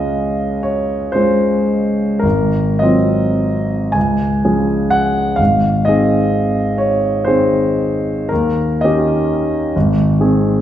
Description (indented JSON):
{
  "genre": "classical, romantic nocturne for solo piano",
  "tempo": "34-45 BPM (dotted quarters)",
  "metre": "6/8",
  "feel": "rubato",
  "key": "Db major",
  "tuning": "A4 = 440 Hz",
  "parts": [
    { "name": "warm concert grand piano", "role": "solo", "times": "0.0-10.6 s", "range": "Ab1 to Ab5", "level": "-13 LUFS", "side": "equal", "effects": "none" }
  ],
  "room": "wet recital hall reverb, RT60 1.6 s",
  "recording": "heard from further back in the room",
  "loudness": "-13 LUFS",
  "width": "side -11 dB against mid",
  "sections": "0.0-10.6 A section",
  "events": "none",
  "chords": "0.0 Db; 2.2 Ab6; 4.0 Db; 5.4 Ab; 8.3 Eb7; 9.8 Ab"
}